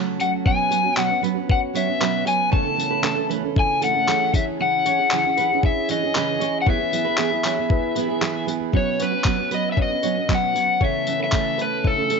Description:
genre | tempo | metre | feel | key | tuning
acoustic pop | 116 BPM | 4/4 | straight | unclear | A4 = 440 Hz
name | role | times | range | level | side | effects
felt-muted upright piano | accompaniment | 0.0-12.2 s | C#3 to C#5 | -32 LUFS | left 13 dB | none
fingerpicked steel-string acoustic guitar | accompaniment | 0.0-12.2 s | B2 to A4 | -25 LUFS | right 13 dB | none
glass harmonica | sustained chords | 0.0-12.2 s | B3 to B5 | -34 LUFS | left 2 dB | none
overdriven slide guitar | melody | 0.2-12.2 s | A4 to A5 | -22 LUFS | left 4 dB | none
dusty soul sampler-style drum kit | drums | 0.2-12.2 s | handclaps, kick drum, tambourine | -23 LUFS | left 1 dB | none
nylon-string guitar | arpeggios | 0.7-12.2 s | G#4 to C#5 | -32 LUFS | right 12 dB | none
room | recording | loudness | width
light reverb, small room ambience | 1960s-style stereo with parts hard left and right, nothing above 7.6 kHz | -18 LUFS | side -5 dB against mid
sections
0.0-8.7 A section; 8.7-12.2 B section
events
none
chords
0.5 Bsus2; 2.5 A/C#; 4.3 C#m; 6.7 E; 8.7 Bsus2; 10.8 A/C#

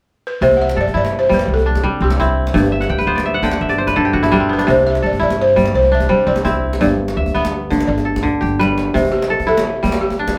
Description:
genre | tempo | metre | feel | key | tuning
west african traditional, West African string and xylophone music | 113 BPM (dotted quarters) | 12/8 | straight | C lydian | A4 = 440 Hz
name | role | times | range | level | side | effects
balafon | melody | 0.3-10.4 s | G4 to F#5 | -20 LUFS | equal | none
kora | arpeggios | 0.4-10.4 s | G2 to G5 | -19 LUFS | equal | none
upright bass | bass | 0.4-8.9 s | G1 to C3 | -23 LUFS | equal | none
djembe | percussion | 0.4-10.4 s | none | -26 LUFS | equal | none
room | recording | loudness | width
moderate studio reverb, RT60 0.6 s | band playing live in one room | -16 LUFS | mono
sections
0.4-8.9 A section; 8.9-10.4 B section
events
kora fill 2.7-4.7; drum fill 8.2-8.9; balafon solo 8.9-10.4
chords
0.4 C; 2.5 G; 4.7 C; 6.8 G; 8.9 C

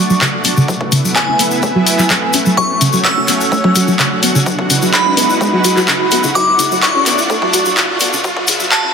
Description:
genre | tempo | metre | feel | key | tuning
progressive house | 127 BPM | 4/4 | straight | unclear | A4 = 441 Hz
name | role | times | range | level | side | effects
glassy synth bell | melody | 0.0-8.9 s | G#5 to E6 | -17 LUFS | equal | chorus, phaser, dub echo
supersaw pad | sustained chords | 0.0-8.9 s | G#3 to F#5 | -19 LUFS | right 1 dB | sidechain pumping, low-pass filter
soft round pluck | arpeggios | 0.0-8.9 s | C#3 to C#4 | -16 LUFS | equal | ensemble chorus, sidechain pumping, dub echo
riser | sound effects | 1.3-8.9 s | none | -24 LUFS | right 1 dB | none
maracas | percussion | 0.1-8.8 s | none | -20 LUFS | left 4 dB | none
electronic kick drum | drums | 0.2-8.8 s | none | -23 LUFS | equal | high-pass filter on kick, high-pass filter on room
house drum kit | drums | 0.2-8.8 s | handclaps, hi-hat | -16 LUFS | left 1 dB | sidechain pumping on hats
room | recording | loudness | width
wet lush hall reverb, RT60 2.5 s | dense, heavily limited modern master, high-pass filter | -10 LUFS | side -6 dB against mid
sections
0.0-8.9 A section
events
build-up 0.0-8.9; filter sweep on synth pluck 0.0-8.9; filter sweep on supersaw synth 0.0-8.9; riser 1.3-8.9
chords
0.0 D; 0.7 Asus2; 2.6 F#m; 4.5 Eadd9; 6.4 D; 8.2 Asus2

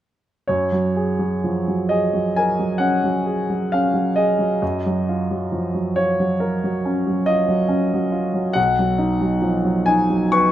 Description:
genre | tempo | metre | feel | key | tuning
classical, impressionist solo piano | 42-47 BPM (dotted quarters) | 9/8 | rubato | F# major | A4 = 440 Hz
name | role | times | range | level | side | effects
clear concert grand piano | solo | 0.5-10.5 s | B1 to C#6 | -17 LUFS | equal | none
room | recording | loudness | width
light reverb | close, detailed microphones | -18 LUFS | side -12 dB against mid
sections
0.5-10.5 A section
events
none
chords
0.5 F#add9; 4.6 D#m9/F#; 8.6 B

